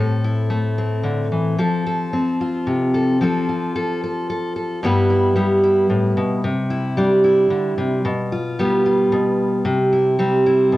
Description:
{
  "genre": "folk",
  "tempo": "111 BPM",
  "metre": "3/4",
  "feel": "straight",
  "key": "G mixolydian",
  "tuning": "A4 = 436 Hz",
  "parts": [
    { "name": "fingerpicked steel-string acoustic guitar", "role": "solo", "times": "0.0-10.8 s", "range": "G2 to B4", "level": "-16 LUFS", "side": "equal", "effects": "none" }
  ],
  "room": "light reverb",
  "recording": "worn, warbling old tape, cassette tape, warbly pitch drift",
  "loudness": "-16 LUFS",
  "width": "side -16 dB against mid",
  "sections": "0.0-3.2 A section; 3.2-4.8 B section; 4.8-10.8 C section",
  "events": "none",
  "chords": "0.0 Am; 1.6 F; 4.8 G6; 6.4 Cadd9; 8.0 G7/B; 9.7 C",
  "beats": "0.50 1.04 | 1.58 2.12 2.66 | 3.20 3.74 4.28 | 4.82 5.36 5.89 | 6.43 6.97 7.51 | 8.05 8.58 9.12 | 9.66 10.19 10.73"
}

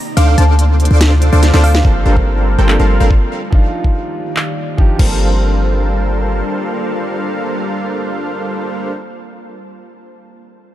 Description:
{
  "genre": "future bass",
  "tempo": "143 BPM",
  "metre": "4/4",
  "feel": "half-time",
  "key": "G minor",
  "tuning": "A4 = 439 Hz",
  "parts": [
    { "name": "ethereal airy pad", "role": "sustained chords", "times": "0.0-8.9 s", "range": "C3 to A5", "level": "-26 LUFS", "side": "left 1 dB", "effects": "ensemble chorus, built-in reverb, sidechain pumping" },
    { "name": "thumb-piano-like synth pluck", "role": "melody", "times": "0.2-1.8 s", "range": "F5 to A5", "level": "-23 LUFS", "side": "equal", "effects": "chorus, sidechain pumping, digital delay" },
    { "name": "supersaw stab", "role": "riff", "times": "0.2-8.9 s", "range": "G3 to D6", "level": "-19 LUFS", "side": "equal", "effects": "sidechain pumping, digital delay" },
    { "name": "warm 808-style bass", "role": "bass", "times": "0.2-6.4 s", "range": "G1 to D2", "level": "-11 LUFS", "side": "equal", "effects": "sidechain pumping" },
    { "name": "trap drum kit", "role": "drums", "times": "0.2-5.1 s", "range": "crash cymbal, handclaps, hi-hat, ride cymbal, snare drum", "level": "-21 LUFS", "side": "equal", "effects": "none" },
    { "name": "warm concert grand piano", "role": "accompaniment", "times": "1.8-10.7 s", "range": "F3 to A5", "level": "-25 LUFS", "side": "right 3 dB", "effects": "sidechain pumping, digital delay" },
    { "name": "electronic kick drum", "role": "drums", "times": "1.8-5.1 s", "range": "none", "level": "-12 LUFS", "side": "equal", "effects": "none" }
  ],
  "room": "digital ambience",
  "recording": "dark, warm production",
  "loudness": "-12 LUFS",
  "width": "side -13 dB against mid",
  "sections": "0.0-1.8 A section; 1.8-5.2 B section; 5.2-8.6 C section",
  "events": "drop 0.0-1.8; kick drops out 0.2-1.8; drum fill 1.4-1.8; band accent 1.7; filter sweep on ambient pad 1.8-5.2",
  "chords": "0.2 Dm7; 1.8 Gm11; 3.3 Ebmaj9; 5.0 Gm11",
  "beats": "| 0.17 0.59 1.01 1.43 | 1.85 2.27 2.69 3.10 | 3.52 3.94 4.36 4.78 | 5.20 5.62 6.04 6.46 | 6.88 7.30 7.72 8.14"
}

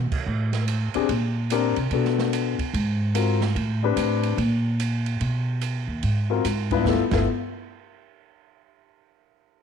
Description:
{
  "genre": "jazz, small-group swing and bop",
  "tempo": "146 BPM",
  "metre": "4/4",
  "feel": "swing 64% on 8ths",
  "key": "unclear",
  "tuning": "A4 = 440 Hz",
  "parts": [
    { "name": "upright bass", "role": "bass", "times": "0.0-7.3 s", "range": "G1 to C3", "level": "-24 LUFS", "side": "right 1 dB", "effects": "none" },
    { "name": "open jazz drum kit", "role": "drums", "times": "0.1-7.2 s", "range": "crash cymbal, hi-hat, kick drum, ride cymbal, snare drum", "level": "-31 LUFS", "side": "right 7 dB", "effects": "none" },
    { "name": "warm concert grand piano", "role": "accompaniment", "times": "0.9-7.3 s", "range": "G2 to B4", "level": "-24 LUFS", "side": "left 10 dB", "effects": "none" }
  ],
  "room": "light reverb, studio reverb",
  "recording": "1960s-style stereo with parts hard left and right",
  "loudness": "-21 LUFS",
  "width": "side -7 dB against mid",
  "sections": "0.3-6.9 A section; 6.9-8.5 B section",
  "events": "none",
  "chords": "0.3 Am7; 1.1 Bb69; 1.9 Bm7; 2.7 Ab13; 3.6 Am11; 4.4 N.C.; 5.2 B; 6.0 Ab13; 6.9 G13",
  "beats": "| 0.27 0.68 1.09 1.50 | 1.91 2.32 2.74 3.15 | 3.56 3.97 4.38 4.79 | 5.21 5.62 6.03 6.44 | 6.85"
}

